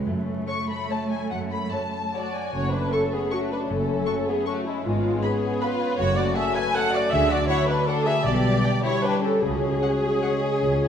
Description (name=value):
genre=classical, orchestral ballroom waltz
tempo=138-171 BPM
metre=3/4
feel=rubato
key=F# minor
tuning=A4 = 440 Hz
part: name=concert harp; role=arpeggios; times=0.0-10.9 s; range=F#2 to D5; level=-31 LUFS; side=left 5 dB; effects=none
part: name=warm symphonic cello section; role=bass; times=0.0-10.9 s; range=F#2 to A3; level=-31 LUFS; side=right 2 dB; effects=none
part: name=warm symphonic double bass section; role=bass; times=0.1-10.9 s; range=F#1 to F#2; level=-30 LUFS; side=right 2 dB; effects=none
part: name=warm symphonic violin section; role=melody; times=0.5-10.3 s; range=F#5 to C#6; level=-34 LUFS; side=left 3 dB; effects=none
part: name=warm symphonic violin section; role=second line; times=0.5-10.9 s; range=G#3 to C#5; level=-30 LUFS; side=left 2 dB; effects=none
part: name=warm symphonic viola section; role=accompaniment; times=0.5-10.9 s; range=E4 to G#5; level=-25 LUFS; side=right 1 dB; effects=none
part: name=dark French horn section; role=sustained chords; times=2.5-10.9 s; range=G3 to G4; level=-29 LUFS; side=left 2 dB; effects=none
room=moderate concert hall reverb, RT60 1.8 s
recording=minimal, uncompressed stereo recording, vinyl crackle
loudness=-21 LUFS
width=side -8 dB against mid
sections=0.0-2.5 A section; 2.5-10.9 A section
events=none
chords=0.1 F#m; 4.8 C#7/G#; 6.0 F#m; 7.1 D; 8.2 G/B; 9.4 C#sus4